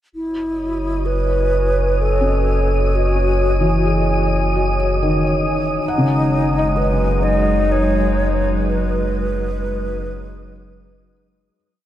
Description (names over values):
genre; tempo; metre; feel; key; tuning
ambient; 63 BPM; 3/4; straight; unclear; A4 = 437 Hz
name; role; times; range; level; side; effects
hollow alto flute; melody; 0.1-11.0 s; D#4 to D#5; -22 LUFS; equal; diffuse ambient delay
warbly tape-like pad; sustained chords; 0.7-11.5 s; G#3 to G#5; -23 LUFS; right 2 dB; chorus, built-in reverb
warm sub bass; bass; 0.1-11.5 s; F#1; -21 LUFS; equal; none
wind-like tuned noise texture; texture; 0.6-11.6 s; D#5 to D#6; -28 LUFS; left 1 dB; built-in reverb
felt-muted upright piano; arpeggios; 2.2-11.6 s; C#3 to F#5; -22 LUFS; left 1 dB; diffuse ambient delay
bowed-like drone; drone; 7.0-11.6 s; F#3 to F#4; -28 LUFS; left 1 dB; built-in reverb
room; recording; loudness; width
moderate huge ambient reverb, RT60 7.0 s; dark, warm production; -16 LUFS; side -12 dB against mid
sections
0.1-11.6 A section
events
fade-out 7.7-11.6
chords
0.1 F#7(no3); 5.8 G#m/F#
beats
| 0.12 1.07 2.03 | 2.98 3.93 4.88 | 5.83 6.79 7.74 | 8.69 9.64 10.60